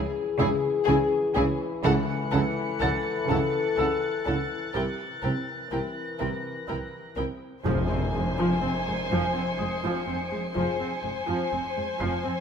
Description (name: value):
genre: cinematic, suspense film score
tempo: 62 BPM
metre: 3/4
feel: straight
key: F minor from 7.7 s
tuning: A4 = 441 Hz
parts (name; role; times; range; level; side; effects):
- dark French horn section; sustained chords; 0.0-10.9 s; E3 to Bb4; -29 LUFS; left 6 dB; none
- muted chamber cello section; riff; 0.0-12.3 s; F2 to C#4; -34 LUFS; right 2 dB; none
- warm concert grand piano; texture; 0.0-12.4 s; Eb6 to C7; -39 LUFS; right 2 dB; none
- muted studio violin section; melody; 0.4-12.4 s; F#5 to G#5; -35 LUFS; left 1 dB; none
- muted chamber violin section; second line; 0.4-12.4 s; G#4 to C5; -33 LUFS; left 3 dB; none
- muted chamber viola section; accompaniment; 0.4-12.3 s; F3 to E4; -33 LUFS; right 2 dB; none
- muted chamber cello section; bass; 0.4-12.3 s; F2 to C#3; -32 LUFS; right 2 dB; none
- muted chamber double bass section; bass; 0.4-12.1 s; F1 to C#2; -34 LUFS; right 3 dB; none
- timpani; percussion; 1.8-3.3, 7.7-9.1 s; F2 to C#3; -33 LUFS; left 1 dB; none
- muted symphonic violin section; texture; 1.8-12.4 s; F#6 to C#7; -37 LUFS; equal; none
- tam-tam; percussion; 7.7-11.5 s; none; -38 LUFS; left 1 dB; none
- impact; sound effects; 7.7-10.6 s; none; -37 LUFS; equal; none
room: moderate scoring stage reverb, RT60 2.0 s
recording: none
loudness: -24 LUFS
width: side -7 dB against mid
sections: 0.0-7.7 A section; 7.7-12.4 B section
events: band accent 7.7-8.6; impact 7.7-10.6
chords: 0.0 C#m; 1.8 F#m7/C#; 4.7 C7; 7.7 Fm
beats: 0.88 | 1.84 2.81 3.78 | 4.75 5.72 6.68 | 7.65 8.62 9.59 | 10.55 11.52